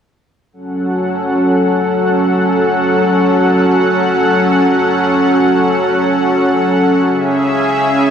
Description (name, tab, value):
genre	dubstep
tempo	free time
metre	none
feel	none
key	F# minor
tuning	A4 = 440 Hz
part	supersaw pad	sustained chords	0.7-8.1 s	C#3 to F#5	-11 LUFS	equal	low-pass filter
room	wet lush hall reverb, RT60 2.5 s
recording	played on a big sound system in a bare room, stone room reverb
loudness	-11 LUFS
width	side -8 dB against mid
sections	0.5-8.1 A section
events	filter sweep on supersaw synth 0.5-8.1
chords	0.5 F#m; 7.1 C#m